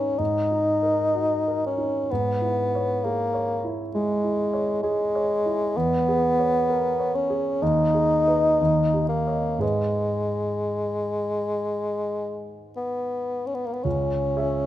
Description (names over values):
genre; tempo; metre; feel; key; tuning
classical, romantic duo for bassoon and grand piano; 56-68 BPM; 4/4; rubato; G# minor; A4 = 440 Hz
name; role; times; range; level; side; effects
mellow bassoon; melody; 0.0-14.7 s; G#3 to D#4; -23 LUFS; left 1 dB; none
warm grand piano; accompaniment; 0.0-14.7 s; C#2 to E5; -27 LUFS; right 2 dB; none
room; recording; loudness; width
moderate scoring stage reverb, RT60 1.6 s; close, detailed microphones; -21 LUFS; side -13 dB against mid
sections
0.0-13.9 A section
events
none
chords
0.2 D#m/G#; 2.1 C#m/G#; 5.7 A#m7b5/E; 7.6 G#m/D#; 8.6 D#7; 9.6 G#m; 13.9 C#m